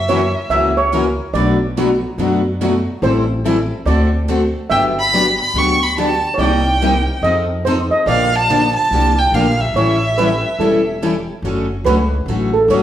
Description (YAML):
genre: acoustic string swing (jazz manouche)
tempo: 143 BPM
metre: 4/4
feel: swing 62% on 8ths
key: D major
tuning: A4 = 444 Hz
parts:
  - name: dark violin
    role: melody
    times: 0.0-0.5, 4.7-11.0 s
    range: E5 to C#6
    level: -17 LUFS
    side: right 1 dB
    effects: none
  - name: steel pan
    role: second line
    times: 0.0-12.8 s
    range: A4 to E5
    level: -18 LUFS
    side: right 2 dB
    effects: none
  - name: upright bass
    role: bass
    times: 0.0-12.8 s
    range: E1 to F#2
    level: -20 LUFS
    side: equal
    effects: none
  - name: picked plugged-in steel-string acoustic guitar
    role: accompaniment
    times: 0.1-12.8 s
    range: B2 to A4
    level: -19 LUFS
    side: left 3 dB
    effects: none
  - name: picked steel-string acoustic guitar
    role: accompaniment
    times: 0.1-12.8 s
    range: B2 to B4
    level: -22 LUFS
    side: right 2 dB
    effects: none
room: wet large studio reverb, RT60 1.2 s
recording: band playing live in one room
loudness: -13 LUFS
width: side -11 dB against mid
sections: 0.0-11.4 A section; 11.4-12.8 B section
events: steel pan solo 11.4-12.8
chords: 0.0 F#7; 1.3 Bm7; 3.0 Am7; 3.9 D7; 4.7 Gmaj7; 6.4 Cm7; 7.2 F7; 8.1 Bb6; 9.8 A7; 11.4 Dmaj7